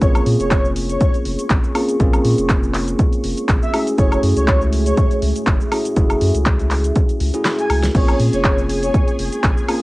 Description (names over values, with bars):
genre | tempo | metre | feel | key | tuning
deep house | 121 BPM | 4/4 | swing 55% on 16ths | unclear | A4 = 438 Hz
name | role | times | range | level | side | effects
breathy flute-like synth lead | melody | 0.0-9.1 s | Db5 to Ab5 | -24 LUFS | equal | ensemble chorus, cassette tape, tape echo
deep dark ambient pad | sustained chords | 0.0-9.8 s | A3 to Db6 | -28 LUFS | right 1 dB | chorus, built-in reverb, sidechain pumping, cassette tape
bell-like tine electric piano | stabs | 0.0-9.8 s | A3 to Ab4 | -21 LUFS | equal | sidechain pumping, cassette tape
warm sub bass | bass | 0.0-9.5 s | F1 to Bb2 | -20 LUFS | equal | none
deep house drum kit | drums | 0.0-9.8 s | crash cymbal, handclaps, hi-hat, shaker, snare drum, woodblock | -24 LUFS | equal | overdrive, vintage 12-bit sampler grit, cassette tape
electronic kick drum | drums | 0.0-9.5 s | none | -17 LUFS | equal | vintage 12-bit sampler grit, cassette tape
analog string pad | texture | 7.9-9.8 s | Ab4 to Ab5 | -29 LUFS | right 1 dB | ensemble chorus, cassette tape
room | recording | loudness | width
light reverb | home recording on cassette | -14 LUFS | side -20 dB against mid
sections
0.0-9.8 A section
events
kick drops out 7.5-8.0; drum fill 7.5-8.0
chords
0.0 Bbm9; 3.7 Gbm9; 8.0 Bbm9